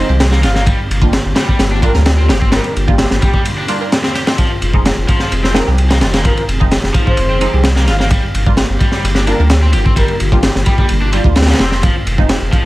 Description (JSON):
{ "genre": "breakbeat, breaks", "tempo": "129 BPM", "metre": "4/4", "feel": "straight", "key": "unclear", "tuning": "A4 = 442 Hz", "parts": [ { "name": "breathy flute-like synth lead", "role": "melody", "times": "0.0-10.9 s", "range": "G4 to F5", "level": "-23 LUFS", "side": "equal", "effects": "chorus, small speaker sound, tape echo" }, { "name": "phased analog pad", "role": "sustained chords", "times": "0.0-12.7 s", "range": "D3 to Ab4", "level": "-25 LUFS", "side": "left 1 dB", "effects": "phaser, chorus, sidechain pumping" }, { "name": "raw garage guitar", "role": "riff", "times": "0.0-12.6 s", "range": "F3 to G4", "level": "-22 LUFS", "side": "left 1 dB", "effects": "overdrive, vintage 12-bit sampler grit, tape echo" }, { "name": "filtered dub chord stab", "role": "stabs", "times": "0.0-12.4 s", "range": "F3 to Bb4", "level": "-22 LUFS", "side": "right 2 dB", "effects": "phaser, wide subtle chorus, tape echo" }, { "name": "saturated sub bass", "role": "bass", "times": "0.0-12.5 s", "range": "F1 to D2", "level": "-14 LUFS", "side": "equal", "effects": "none" }, { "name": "crunchy breakbeat drum kit", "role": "drums", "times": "0.2-12.6 s", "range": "kick drum, ride cymbal, snare drum", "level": "-13 LUFS", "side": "equal", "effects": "none" } ], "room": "small room ambience", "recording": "vinyl crackle", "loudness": "-11 LUFS", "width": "side -18 dB against mid", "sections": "0.0-12.7 A section", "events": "break 3.5-4.4", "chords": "0.0 Fm7; 0.7 Gm7; 4.4 Fm7; 8.1 Gm7; 11.8 Fm7" }